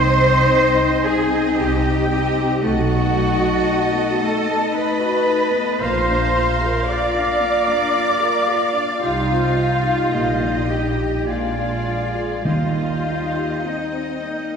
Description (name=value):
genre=classical, slow romantic movement for symphony orchestra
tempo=49-57 BPM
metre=3/4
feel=rubato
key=Eb major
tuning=A4 = 440 Hz
part: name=rich symphonic violin section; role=melody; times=0.0-14.6 s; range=D5 to F5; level=-31 LUFS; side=left 1 dB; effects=none
part: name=clear clarinet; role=second line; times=0.0-14.6 s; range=D5 to F5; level=-30 LUFS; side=left 1 dB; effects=none
part: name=clear oboe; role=second line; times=0.0-14.6 s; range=G5 to Bb5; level=-31 LUFS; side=equal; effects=none
part: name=large flute ensemble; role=second line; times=0.0-14.6 s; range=Eb5 to D6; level=-27 LUFS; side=left 2 dB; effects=none
part: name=rich symphonic violin section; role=second line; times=0.0-14.6 s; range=Eb5 to D6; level=-30 LUFS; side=left 3 dB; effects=none
part: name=warm studio viola section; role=accompaniment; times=0.0-14.6 s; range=G3 to Bb4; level=-27 LUFS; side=equal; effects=none
part: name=dark French horn section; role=sustained chords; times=0.0-14.6 s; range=G3 to F4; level=-25 LUFS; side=left 6 dB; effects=none
part: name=clear symphonic double bass section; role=bass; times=0.0-13.5 s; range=Bb1 to Eb2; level=-23 LUFS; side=right 2 dB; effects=none
part: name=rich symphonic cello section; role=bass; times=0.0-14.6 s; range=Eb4 to D5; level=-21 LUFS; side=right 1 dB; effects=none
part: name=timpani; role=percussion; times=12.4-14.2 s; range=Eb3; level=-24 LUFS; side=equal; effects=none
room=wet scoring stage reverb, RT60 1.8 s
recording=heard from further back in the room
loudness=-16 LUFS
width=side -6 dB against mid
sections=0.0-14.6 A section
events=none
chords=0.0 Cm; 2.6 B7; 5.8 Bb; 9.0 Cm; 10.1 Eb/Bb; 11.3 Bb7; 12.5 Eb